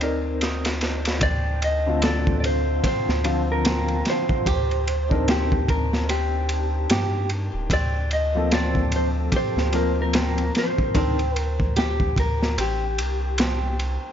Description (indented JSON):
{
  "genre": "trip hop",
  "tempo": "74 BPM",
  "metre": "4/4",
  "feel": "swing 58% on 16ths",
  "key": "unclear",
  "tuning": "A4 = 440 Hz",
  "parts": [
    { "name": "mellow electric guitar", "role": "melody", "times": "0.0-13.8 s", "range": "G4 to Eb5", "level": "-26 LUFS", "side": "left 1 dB", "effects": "tape echo" },
    { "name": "felt-muted upright piano", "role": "accompaniment", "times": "0.0-11.1 s", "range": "D3 to D5", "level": "-28 LUFS", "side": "left 3 dB", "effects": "tremolo, tape echo" },
    { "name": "soft dub sub bass", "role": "bass", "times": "0.0-14.0 s", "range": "D1 to G2", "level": "-25 LUFS", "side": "equal", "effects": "none" },
    { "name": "crunchy breakbeat drum kit", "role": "drums", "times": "0.0-14.0 s", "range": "kick drum, ride cymbal, snare drum", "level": "-25 LUFS", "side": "equal", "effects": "high-pass filter on kick, high-pass filter on cymbals, high-pass filter on snare, high-pass filter on room" },
    { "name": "flamenco guitar", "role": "arpeggios", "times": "0.4-14.1 s", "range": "C4 to A4", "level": "-34 LUFS", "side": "right 5 dB", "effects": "ping-pong delay" }
  ],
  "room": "little or no reverb",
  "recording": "nothing above 7.5 kHz",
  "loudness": "-20 LUFS",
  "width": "side -9 dB against mid",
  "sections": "0.0-1.2 A section; 1.2-14.1 B section",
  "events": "none",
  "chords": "0.0 Cm9/D; 1.2 Dm7; 4.5 Cm9/D; 7.7 Gm11/D (rootless); 10.9 Csus2/D"
}